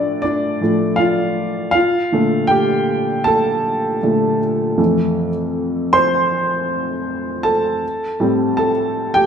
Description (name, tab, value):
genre	pop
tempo	79 BPM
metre	4/4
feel	straight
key	F major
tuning	A4 = 440 Hz
part	warm upright piano	solo	0.0-9.3 s	F2 to C6	-15 LUFS	equal	none
room	wet large studio reverb, RT60 1.2 s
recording	band playing live in one room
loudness	-15 LUFS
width	side -7 dB against mid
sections	0.0-9.3 A section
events	upright piano solo 0.0-9.3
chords	0.0 Dm/A; 1.8 Bbmaj7; 4.8 Fmaj7; 7.8 Am7